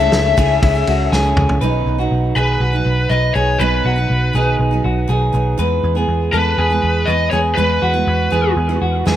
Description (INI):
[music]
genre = jangly indie pop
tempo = 121 BPM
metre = 4/4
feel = straight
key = unclear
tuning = A4 = 442 Hz
[part]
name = lead guitar through a small cranked amp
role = melody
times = 0.0-8.5 s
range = B4 to E5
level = -19 LUFS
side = left 3 dB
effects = overdrive, tape echo
[part]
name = overdriven combo organ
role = accompaniment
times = 0.0-1.6 s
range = G#4 to C#5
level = -29 LUFS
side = left 3 dB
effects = tape echo
[part]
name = picked steel-string acoustic guitar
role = accompaniment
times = 0.0-9.2 s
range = B2 to G#4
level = -23 LUFS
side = right 5 dB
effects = tape echo
[part]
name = clean electric guitar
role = arpeggios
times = 0.0-9.2 s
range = F#4 to B4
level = -20 LUFS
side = equal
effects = tape echo
[part]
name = vintage muted picked electric bass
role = bass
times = 0.0-9.2 s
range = B1 to E2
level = -18 LUFS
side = equal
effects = none
[part]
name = loose indie drum kit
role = drums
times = 0.1-1.6, 9.1-9.2 s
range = kick drum, ride cymbal, snare drum, toms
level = -19 LUFS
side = equal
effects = none
[sound]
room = moderate spring reverb, RT60 1.2 s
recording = echo-heavy mix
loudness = -14 LUFS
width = side -11 dB against mid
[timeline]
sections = 0.0-1.6 A section; 1.6-9.2 B section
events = drum fill 1.1-1.6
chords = 0.0 Amaj7/C#; 1.6 B; 5.6 E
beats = 0.13 0.62 1.12 | 1.62 2.11 2.61 3.11 | 3.60 4.10 4.60 5.09 | 5.59 6.09 6.58 7.08 | 7.58 8.07 8.57 9.06